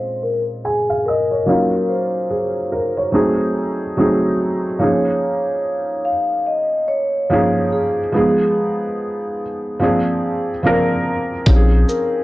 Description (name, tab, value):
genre	lo-fi hip hop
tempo	72 BPM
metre	4/4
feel	swing 59% on 16ths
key	Bb minor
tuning	A4 = 440 Hz
part	vibraphone with soft mallets	melody	0.0-12.2 s	Ab4 to F5	-21 LUFS	left 1 dB	low-pass filter, tape echo
part	felt-muted upright piano	accompaniment	0.0-12.2 s	Bb2 to Ab5	-18 LUFS	right 1 dB	cassette tape, low-pass filter
part	soft dub sub bass	bass	11.5-11.8 s	Bb1	-13 LUFS	equal	none
part	lo-fi sampler-style drum kit	drums	11.5-12.1 s	hi-hat, kick drum, shaker	-14 LUFS	equal	vintage 12-bit sampler grit
room	moderate studio reverb, RT60 0.6 s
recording	dark, warm production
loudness	-16 LUFS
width	side -18 dB against mid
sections	0.0-11.5 A section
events	filter sweep 0.0-11.5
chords	0.0 Bbm11; 1.5 Ebm9; 3.1 Ab7b9; 4.8 Db6; 8.1 Fm7b5; 9.8 Bb7; 11.5 Bbm11